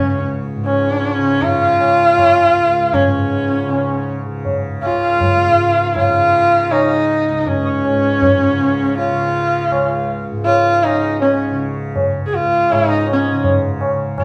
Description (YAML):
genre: indian classical, Hindustani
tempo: 80 BPM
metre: 4/4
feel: straight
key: Db raga hamsadhwani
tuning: A4 = 440 Hz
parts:
  - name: rich sarangi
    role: melody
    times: 0.0-14.2 s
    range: Db4 to Ab4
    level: -17 LUFS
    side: equal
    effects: none
  - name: pedal harmonium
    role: second line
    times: 0.0-13.6 s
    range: Db5 to F5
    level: -30 LUFS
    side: equal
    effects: none
  - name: tanpura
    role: drone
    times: 0.0-14.2 s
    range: Db2 to Db3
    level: -25 LUFS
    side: equal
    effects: none
  - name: tabla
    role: percussion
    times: 0.7-14.2 s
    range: none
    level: -22 LUFS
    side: equal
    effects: none
room: wet studio reverb, RT60 0.6 s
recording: band playing live in one room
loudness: -16 LUFS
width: mono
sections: 0.0-14.2 A section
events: none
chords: none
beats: 0.65 1.41 2.17 | 2.93 3.69 4.45 5.20 | 5.96 6.71 7.46 8.22 | 8.97 9.72 10.46 11.21 | 11.96 12.70 13.45 14.19